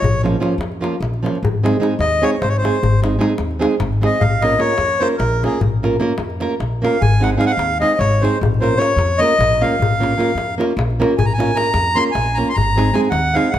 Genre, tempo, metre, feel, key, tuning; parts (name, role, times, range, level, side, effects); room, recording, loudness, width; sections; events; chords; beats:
balkan folk, Balkan wedding band; 301 BPM (eighths); 7/8; straight; Bb minor; A4 = 439 Hz
accordion; melody; 0.0-13.6 s; Ab4 to C6; -18 LUFS; left 1 dB; slapback echo
upright bass; bass; 0.0-13.6 s; Ab1 to F2; -21 LUFS; equal
darbuka; percussion; 0.0-13.6 s; -22 LUFS; left 3 dB
nylon-string guitar; accompaniment; 0.2-13.5 s; F3 to Bb4; -20 LUFS; right 2 dB
moderate recital hall reverb, RT60 1.8 s; -14 LUFS; side -11 dB against mid
0.0-13.6 A section
accordion solo 0.0-13.6
0.0 Bbm; 1.4 Ab; 4.2 Bbm; 7.0 Ab; 8.4 Bbm; 12.6 Ab
| 0.03 0.23 0.43 0.63 0.83 1.03 1.23 | 1.43 1.63 1.83 2.02 2.23 2.42 2.62 | 2.82 3.02 3.22 3.42 3.62 3.82 4.02 | 4.22 4.42 4.62 4.82 5.02 5.22 5.42 | 5.62 5.82 6.02 6.22 6.42 6.61 6.81 | 7.01 7.21 7.41 7.61 7.81 8.01 8.21 | 8.41 8.60 8.80 9.00 9.20 9.40 9.60 | 9.80 9.99 10.19 10.39 10.59 10.79 10.99 | 11.19 11.38 11.58 11.78 11.98 12.17 12.37 | 12.57 12.77 12.96 13.16 13.36 13.56